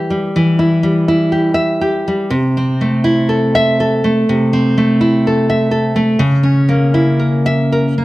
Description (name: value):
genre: romantic piece for solo classical guitar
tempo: 61 BPM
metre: 4/4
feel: rubato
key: unclear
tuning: A4 = 440 Hz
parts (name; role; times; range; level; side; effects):
- nylon-string guitar; solo; 0.0-8.0 s; C3 to E5; -12 LUFS; equal; none
room: light reverb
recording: close, detailed microphones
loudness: -12 LUFS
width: side -18 dB against mid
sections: 0.0-8.0 A section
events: none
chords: 0.0 Em; 2.3 Am/C; 6.2 C#m6